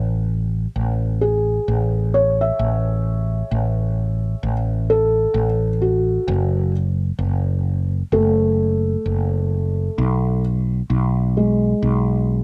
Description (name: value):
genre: acoustic folk-pop ballad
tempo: 65 BPM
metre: 4/4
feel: straight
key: A major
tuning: A4 = 440 Hz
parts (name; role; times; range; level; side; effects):
- mellow fretless electric bass; bass; 0.0-12.4 s; F#1 to B1; -22 LUFS; equal; none
- felt-muted upright piano; arpeggios; 1.2-12.4 s; G#3 to E5; -23 LUFS; equal; slapback echo
room: little or no reverb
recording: recorded outdoors, with no room sound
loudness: -20 LUFS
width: mono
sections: 0.0-12.4 A section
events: none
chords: 0.0 A; 6.3 F#m; 10.0 G#m/B